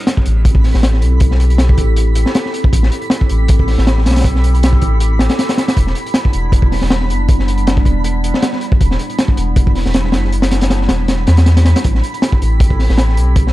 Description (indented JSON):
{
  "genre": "drum and bass, jungle",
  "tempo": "158 BPM",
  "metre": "4/4",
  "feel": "swing 55% on 16ths",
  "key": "A minor",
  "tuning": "A4 = 440 Hz",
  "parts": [
    { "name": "warbly tape-like pad", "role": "sustained chords", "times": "0.0-13.5 s", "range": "G3 to A4", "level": "-23 LUFS", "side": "right 1 dB", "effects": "chorus, built-in reverb" },
    { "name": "twinkling granular texture", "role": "texture", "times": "0.4-13.5 s", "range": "B5", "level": "-28 LUFS", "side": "right 2 dB", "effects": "built-in reverb" },
    { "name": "crunchy breakbeat drum kit", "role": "drums", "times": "0.1-13.5 s", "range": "hi-hat, kick drum, snare drum", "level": "-14 LUFS", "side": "equal", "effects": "none" },
    { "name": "soft dub sub bass", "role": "bass", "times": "0.3-13.5 s", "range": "E1 to E2", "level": "-13 LUFS", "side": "equal", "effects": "none" }
  ],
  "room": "small room ambience",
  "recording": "dark, warm production",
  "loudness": "-11 LUFS",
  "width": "side -16 dB against mid",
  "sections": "0.0-13.5 A section",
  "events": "none",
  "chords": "0.0 Am7; 5.8 Em7; 11.8 Am7"
}